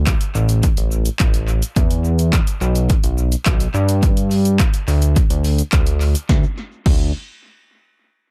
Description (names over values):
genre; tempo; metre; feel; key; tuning
dance-pop; 106 BPM; 4/4; straight; unclear; A4 = 439 Hz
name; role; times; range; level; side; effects
fat analog bass; bass; 0.0-7.1 s; A1 to G2; -19 LUFS; equal; sidechain pumping
punchy analog drum machine; drums; 0.1-7.0 s; crash cymbal, handclaps, hi-hat, kick drum, shaker, snare drum; -20 LUFS; equal; tape echo
room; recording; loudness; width
little or no reverb; echo-heavy mix; -17 LUFS; mono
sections
0.0-6.3 A section; 6.3-8.3 B section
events
none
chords
none